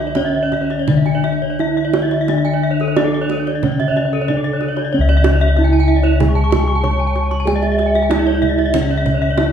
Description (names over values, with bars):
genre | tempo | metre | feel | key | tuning
Balinese gamelan | 81-94 BPM | 4/4 | straight | C# pelog | A4 = 440 Hz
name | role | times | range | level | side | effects
gamelan-type bronze metallophone | melody | 0.0-9.5 s | C#4 to C#5 | -20 LUFS | right 4 dB | none
gamelan-type bronze metallophone | accompaniment | 0.0-9.5 s | C#3 to G#3-30c | -24 LUFS | left 1 dB | none
gamelan-type bronze metallophone | arpeggios | 0.0-9.5 s | A4-20c to C#6 | -22 LUFS | left 3 dB | none
gamelan-type bossed gongs | bass | 0.0-9.5 s | C#2 to G#4-30c | -18 LUFS | left 2 dB | none
gamelan-type bronze metallophone | arpeggios | 0.1-9.5 s | A4-20c to C#6 | -23 LUFS | right 2 dB | none
kendang | percussion | 0.1-9.5 s | none | -23 LUFS | right 5 dB | none
room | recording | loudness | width
wet recital hall reverb, RT60 1.3 s | heard from further back in the room | -14 LUFS | side -8 dB against mid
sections
0.0-4.9 A section; 4.9-9.5 B section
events
none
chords
none